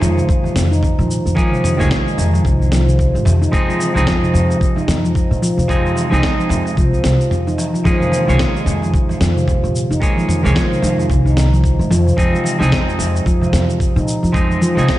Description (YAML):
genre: organic downtempo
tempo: 111 BPM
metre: 4/4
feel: swing 59% on 16ths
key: F minor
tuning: A4 = 438 Hz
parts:
  - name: semi-hollow electric guitar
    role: accompaniment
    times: 0.0-15.0 s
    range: Eb3 to Db5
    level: -21 LUFS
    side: right 2 dB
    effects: sidechain pumping, tape echo
  - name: handpan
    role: arpeggios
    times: 0.0-14.8 s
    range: C3 to Eb4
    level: -18 LUFS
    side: equal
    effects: tape echo
  - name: upright bass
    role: bass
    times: 0.0-14.9 s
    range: C2 to Bb2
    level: -17 LUFS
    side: equal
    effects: sidechain pumping
  - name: dusty soul sampler-style drum kit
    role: drums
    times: 0.0-15.0 s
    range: cabasa, snare drum, toms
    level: -22 LUFS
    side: equal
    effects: none
  - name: darbuka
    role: percussion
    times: 0.0-14.7 s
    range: none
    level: -29 LUFS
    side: equal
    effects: none
  - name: electronic kick drum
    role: drums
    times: 0.3-15.0 s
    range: none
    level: -18 LUFS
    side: equal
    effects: none
room: light reverb, digital ambience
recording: dark, warm production, nothing above 11.0 kHz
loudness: -13 LUFS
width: side -15 dB against mid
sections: 0.0-15.0 A section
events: break 7.3-7.9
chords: 0.0 Eb7sus4; 3.5 Fm7; 7.9 Eb7sus4; 12.2 Fm7